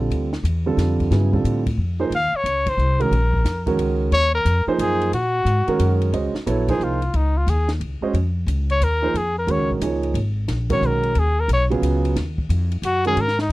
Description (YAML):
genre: modal jazz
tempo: 179 BPM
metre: 3/4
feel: swing 65% on 8ths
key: Bb phrygian from 6.1 s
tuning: A4 = 440 Hz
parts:
  - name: warm concert grand piano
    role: accompaniment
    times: 0.0-13.2 s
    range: C#3 to Eb5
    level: -22 LUFS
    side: right 4 dB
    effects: none
  - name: upright bass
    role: bass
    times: 0.0-13.5 s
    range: Ab1 to Bb2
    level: -21 LUFS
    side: equal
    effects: none
  - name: compact cocktail drum kit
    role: drums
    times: 0.1-13.5 s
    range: hi-hat, kick drum, ride cymbal, snare drum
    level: -32 LUFS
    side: left 1 dB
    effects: none
  - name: breathy trumpet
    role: melody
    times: 2.2-13.5 s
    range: Eb4 to F5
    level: -21 LUFS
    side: left 1 dB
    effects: none
room: little or no reverb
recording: dry, close 1970s-style studio recording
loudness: -18 LUFS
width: side -18 dB against mid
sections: 0.0-6.1 A section; 6.1-13.5 B section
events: band accent 2.6; trumpet solo 6.1-13.5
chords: 0.0 G7sus2; 2.1 Ebm9; 6.1 Bbm11; 10.2 Abm11